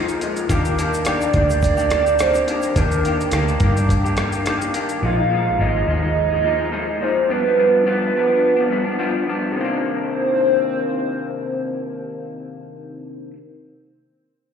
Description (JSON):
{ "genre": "indie pop, bedroom pop", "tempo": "106 BPM", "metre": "4/4", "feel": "swing 55% on 16ths", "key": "C minor", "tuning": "A4 = 441 Hz", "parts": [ { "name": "electric guitar through a small old amp", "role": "accompaniment", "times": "0.0-13.4 s", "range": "G2 to G4", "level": "-22 LUFS", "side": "left 2 dB", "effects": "analog chorus, warbly pitch drift, plate reverb, slapback echo" }, { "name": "vintage muted fingered electric bass", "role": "bass", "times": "0.0-7.3 s", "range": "Ab1 to G2", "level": "-22 LUFS", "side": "equal", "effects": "none" }, { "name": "dusty soul sampler-style drum kit", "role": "drums", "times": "0.1-5.0 s", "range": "hi-hat, kick drum, rim click, shaker", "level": "-23 LUFS", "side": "equal", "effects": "none" }, { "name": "warbly nostalgic lead", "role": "melody", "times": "0.5-12.6 s", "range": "Bb4 to F5", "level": "-20 LUFS", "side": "right 2 dB", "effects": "lush chorus, plate reverb, slapback echo, tape echo" }, { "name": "tube shaker", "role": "percussion", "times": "0.5-2.7 s", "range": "none", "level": "-42 LUFS", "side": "right 5 dB", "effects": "none" } ], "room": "moderate club reverb, RT60 0.7 s", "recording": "live gig heard through the venue's PA, recital hall reverb", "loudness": "-17 LUFS", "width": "side -7 dB against mid", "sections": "0.0-9.6 A section; 9.6-11.8 B section", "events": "none", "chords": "0.5 Ebmaj7; 5.0 Bb7sus4; 7.3 G7; 9.6 Cm9", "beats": "| 0.50 1.06 1.63 2.19 | 2.76 3.33 3.89 4.46 | 5.03 5.59 6.16 6.73 | 7.29 7.86 8.43 8.99 | 9.56 10.12 10.69 11.26" }